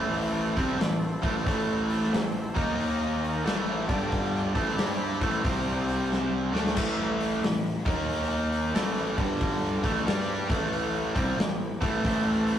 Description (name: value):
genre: blues rock power trio and southern rock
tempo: 91 BPM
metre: 4/4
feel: swing 65% on 8ths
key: A minor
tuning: A4 = 438 Hz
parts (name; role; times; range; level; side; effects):
- overdriven tonewheel organ; sustained chords; 0.0-6.5, 12.1-12.6 s; C4 to E5; -37 LUFS; right 2 dB; none
- cranked stack guitar; riff; 0.0-12.6 s; G2 to G4; -27 LUFS; equal; overdrive
- fuzz picked electric bass; bass; 0.0-12.6 s; G1 to G2; -33 LUFS; equal; overdrive
- big rock drum kit; drums; 0.1-12.6 s; crash cymbal, hi-hat, kick drum, snare drum; -30 LUFS; left 1 dB; none
room: moderate stone room reverb, RT60 1.3 s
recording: rough rehearsal-room recording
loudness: -25 LUFS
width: side -10 dB against mid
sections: 0.0-6.8 A section; 6.8-12.6 A section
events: drum fill 6.1-6.8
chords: 0.0 Am; 2.5 D#5; 3.5 A5; 3.8 G5; 4.4 Am; 5.4 C5; 6.4 D5; 6.8 A5; 7.8 D#5; 8.7 A5; 9.1 G5; 9.7 Am